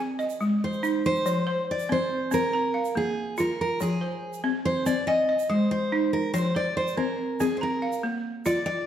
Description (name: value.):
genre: west african traditional, West African string and xylophone music.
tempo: 94 BPM (dotted quarters).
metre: 12/8.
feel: straight.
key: F dorian.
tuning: A4 = 440 Hz.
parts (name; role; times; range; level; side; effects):
balafon; arpeggios; 0.0-8.9 s; F3 to Bb5; -26 LUFS; equal; none.
egg shaker; percussion; 0.2-8.6 s; none; -46 LUFS; right 9 dB; none.
picked steel-string acoustic guitar; melody; 0.6-8.9 s; Ab4 to Eb5; -26 LUFS; equal; none.
room: wet recital hall reverb, RT60 1.5 s.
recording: none.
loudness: -24 LUFS.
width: side -10 dB against mid.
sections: 0.0-8.9 A section.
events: steel-string acoustic guitar solo 0.0-8.9.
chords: 0.0 Ab; 1.3 F5; 2.5 Bb5; 3.8 Fm; 5.1 Ab; 6.3 F5; 7.6 Bb5.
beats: 0.62 | 1.25 1.89 2.53 3.17 | 3.80 4.44 5.07 5.71 | 6.34 6.98 7.61 8.25.